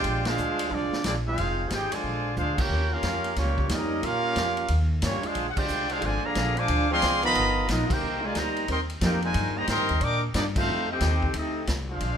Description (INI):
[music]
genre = jazz, big band swing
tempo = 180 BPM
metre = 4/4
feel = swing 64% on 8ths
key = Bb major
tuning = A4 = 440 Hz
[part]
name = warm trumpet section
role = melody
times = 0.0-12.2 s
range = Bb3 to D6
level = -27 LUFS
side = equal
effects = none
[part]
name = bright trombone section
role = second line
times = 0.0-12.2 s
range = Bb2 to G4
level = -30 LUFS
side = right 2 dB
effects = none
[part]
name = upright bass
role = bass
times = 0.0-12.2 s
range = F1 to Bb2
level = -29 LUFS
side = equal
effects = none
[part]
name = vintage drum kit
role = drums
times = 0.0-12.1 s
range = crash cymbal, hi-hat, kick drum, ride cymbal, snare drum, toms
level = -32 LUFS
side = equal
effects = none
[sound]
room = moderate large studio reverb, RT60 1.0 s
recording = minimal, uncompressed stereo recording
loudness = -23 LUFS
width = side -8 dB against mid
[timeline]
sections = 0.0-12.2 A section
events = band accent 0.2, 2.5, 5.5, 7.9, 10.5; drum fill 2.4-2.7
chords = 0.0 Bb9; 1.4 Fm7; 2.0 Bb9; 2.7 Eb9; 5.4 Bb9; 6.7 Dm7b5; 7.4 G7alt; 8.0 Cm7; 10.7 F9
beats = | 0.05 0.38 0.71 1.04 | 1.37 1.71 2.04 2.37 | 2.70 3.03 3.37 3.70 | 4.03 4.36 4.70 5.03 | 5.36 5.69 6.02 6.36 | 6.69 7.02 7.35 7.69 | 8.02 8.35 8.68 9.02 | 9.35 9.68 10.01 10.35 | 10.68 11.01 11.34 11.67 | 12.01